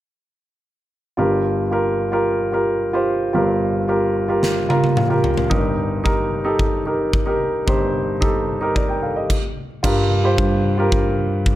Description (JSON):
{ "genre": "piano-driven pop", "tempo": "111 BPM", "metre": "4/4", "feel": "straight", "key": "G minor", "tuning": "A4 = 440 Hz", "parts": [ { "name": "warm grand piano", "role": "accompaniment", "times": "1.2-11.6 s", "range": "G1 to Bb5", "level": "-18 LUFS", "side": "equal", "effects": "none" }, { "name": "huge arena drum kit", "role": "drums", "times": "4.4-11.6 s", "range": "crash cymbal, kick drum, snare drum, toms", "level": "-21 LUFS", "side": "equal", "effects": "none" }, { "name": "tine electric piano", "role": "bass", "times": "9.8-11.6 s", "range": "G2", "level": "-20 LUFS", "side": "equal", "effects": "medium stereo tremolo" } ], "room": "light reverb", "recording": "none", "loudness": "-17 LUFS", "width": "side -14 dB against mid", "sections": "1.2-9.8 A section; 9.8-11.6 B section", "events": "drum fill 4.4-5.5; grand piano fill 4.4-5.5; stop 9.3-9.8", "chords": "1.2 Gm7; 5.5 Eb/G; 9.6 N.C.; 9.8 Gm7", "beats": "| 1.18 1.72 2.26 2.81 | 3.35 3.89 4.43 4.97 | 5.51 6.05 6.59 7.13 | 7.68 8.22 8.76 9.30 | 9.84 10.38 10.92 11.46" }